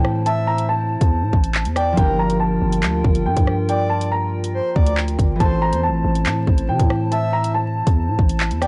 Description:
hip hop, drill; 140 BPM; 4/4; half-time; A phrygian; A4 = 440 Hz
dark concert grand piano; melody; 0.0-8.7 s; G5 to Bb5; -26 LUFS; equal; analog delay
concert harp; accompaniment; 0.0-8.7 s; E3 to A4; -28 LUFS; equal
warbly tape-like pad; sustained chords; 0.0-8.7 s; E4 to A5; -32 LUFS; equal; chorus, built-in reverb
growling 808-style bass; bass; 0.0-8.7 s; G1 to C3; -24 LUFS; equal
drill drum kit; drums; 0.0-8.7 s; handclaps, hi-hat, kick drum, rim click; -21 LUFS; equal
downlifter; sound effects; 0.0-2.0 s; barely audible
breathy flute-like synth lead; second line; 0.3-8.7 s; Bb4 to E5; -29 LUFS; equal; chorus, tremolo, analog delay
little or no reverb; dry, gritty hardware recording, transformer saturation, vinyl crackle, nothing above 10.5 kHz; -19 LUFS; mono
0.0-8.7 A section
0.0 Am; 2.0 Gm7; 5.4 Am
| 0.26 0.69 1.12 1.54 | 1.97 2.40 2.83 3.26 | 3.69 4.12 4.54 4.97 | 5.40 5.83 6.26 6.69 | 7.12 7.54 7.97 8.40

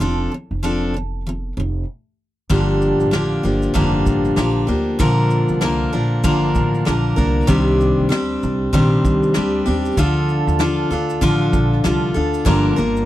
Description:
acoustic pop; 96 BPM; 4/4; swing 60% on 16ths; G minor; A4 = 440 Hz
picked steel-string acoustic guitar; accompaniment; 0.0-13.1 s; G2 to Bb4; -17 LUFS; left 1 dB
upright bass; bass; 0.0-13.1 s; F1 to Eb2; -22 LUFS; right 1 dB
soft brush drum kit; drums; 2.5-13.1 s; crash cymbal, kick drum, shaker, snare drum; -22 LUFS; equal
little or no reverb; dry, close 1970s-style studio recording; -15 LUFS; side -14 dB against mid
0.0-2.5 A section; 2.5-12.5 B section
stop 1.9-2.5
0.0 F6; 2.5 Gm7; 5.0 Bb; 7.5 Cmadd9; 10.0 Dm; 12.5 Gm7
| 0.00 0.63 1.25 1.88 | 2.50 3.13 3.75 4.37 | 5.00 5.62 6.24 6.87 | 7.49 8.11 8.73 9.36 | 9.98 10.60 11.22 11.84 | 12.46

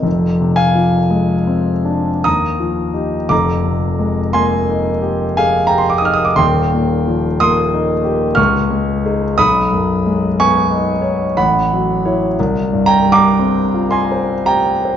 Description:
classical, impressionist solo piano; 52-62 BPM; 3/4; rubato; A4 = 440 Hz
warm concert grand piano; solo; 0.0-15.0 s; Eb1 to F6; -13 LUFS; equal
wet recital hall reverb, RT60 1.6 s; dark, warm production, nothing above 7.5 kHz; -13 LUFS; side -9 dB against mid
0.1-15.0 A section
0.1 Fm6; 2.3 Ebadd9; 3.3 Fm11; 6.4 Eb69; 8.4 Dbadd9; 9.4 B69; 11.4 A69; 12.4 C7sus4
| 0.05 1.13 2.25 | 3.31 4.35 5.38 | 6.40 7.40 8.38 | 9.38 10.38 11.36 | 12.37 13.39 14.46

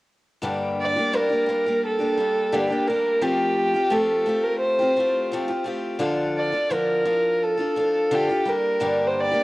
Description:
rock; 86 BPM; 4/4; straight; G minor; A4 = 441 Hz
picked steel-string acoustic guitar; accompaniment; 0.4-9.4 s; G2 to A4; -25 LUFS; left 1 dB; cassette tape
dark fiddle; melody; 0.8-9.4 s; G4 to D5; -21 LUFS; equal; cassette tape, tape echo
moderate spring reverb, RT60 1.3 s, small room ambience; home recording on cassette; -20 LUFS; side -20 dB against mid
0.4-9.4 A section
0.4 Gm; 3.2 Fadd9; 6.0 Dm; 8.4 Gm
| 0.44 1.14 1.84 2.53 | 3.23 3.93 4.62 5.32 | 6.01 6.71 7.41 8.10 | 8.79

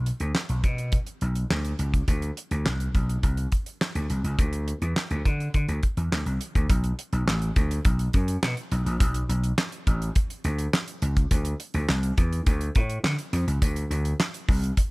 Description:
early-eighties boogie funk; 104 BPM; 4/4; straight; A4 = 439 Hz
vintage slap bass; bass; 0.0-14.7 s; A1 to D3; -26 LUFS; equal
damped 70s drum kit; drums; 0.1-14.9 s; handclaps, hi-hat, kick drum, snare drum; -25 LUFS; equal
little or no reverb; -23 LUFS; side -25 dB against mid
0.0-6.7 A section; 6.7-14.9 B section
0.35 0.93 1.50 | 2.08 2.66 3.23 3.81 | 4.39 4.96 5.54 6.12 | 6.70 7.27 7.85 8.43 | 9.00 9.58 10.16 10.73 | 11.31 11.89 12.46 13.04 | 13.62 14.20 14.77

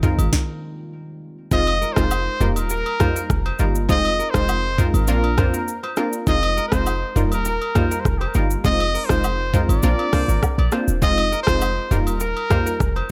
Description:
afrobeats; 101 BPM; 4/4; straight; F dorian; A4 = 439 Hz
analog pluck; accompaniment; 0.0-12.7 s; G3 to F4; -27 LUFS; equal; chorus
kora; riff; 0.0-13.1 s; Bb4 to D5; -33 LUFS; equal; delay
short 808-style bass; bass; 0.0-13.0 s; Eb1 to C2; -24 LUFS; equal
afro-pop drum kit; drums; 0.0-12.9 s; hi-hat, kick drum, rim click, shaker, snare drum, toms; -24 LUFS; equal
agogo bells and woodblock; percussion; 0.2-13.1 s; -35 LUFS; equal
clear trumpet; melody; 1.5-13.1 s; G4 to Eb5; -26 LUFS; equal
little or no reverb; -20 LUFS; mono
0.0-1.5 A section; 1.5-13.1 B section
stop 0.3-1.5
0.3 N.C.; 1.5 Fm7; 2.4 Ebadd9; 3.9 Fm7; 5.1 Bbadd9; 6.3 Fm7; 7.2 Ebadd9; 8.6 Fm7; 9.8 Bbadd9; 11.0 Fm7; 11.9 Ebadd9
0.33 0.92 | 1.52 2.11 2.71 3.30 | 3.89 4.49 5.08 5.67 | 6.27 6.86 7.46 8.05 | 8.64 9.24 9.83 10.43 | 11.02 11.62 12.21 12.80

